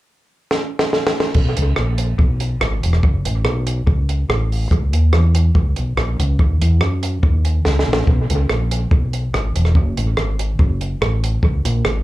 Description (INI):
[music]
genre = ska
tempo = 143 BPM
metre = 4/4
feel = straight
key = unclear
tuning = A4 = 440 Hz
[part]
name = compact cocktail drum kit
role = drums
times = 0.5-11.9 s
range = crash cymbal, hi-hat, kick drum, rim click, snare drum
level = -18 LUFS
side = equal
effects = analog delay
[part]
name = fingered electric bass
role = bass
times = 1.3-12.0 s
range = E1 to F#2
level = -17 LUFS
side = equal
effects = none
[sound]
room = little or no reverb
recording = live gig heard through the venue's PA, club ambience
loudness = -15 LUFS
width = side -16 dB against mid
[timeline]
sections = 0.0-1.4 A section; 1.4-12.0 B section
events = drum fill 0.5-1.4, 7.7-8.1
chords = none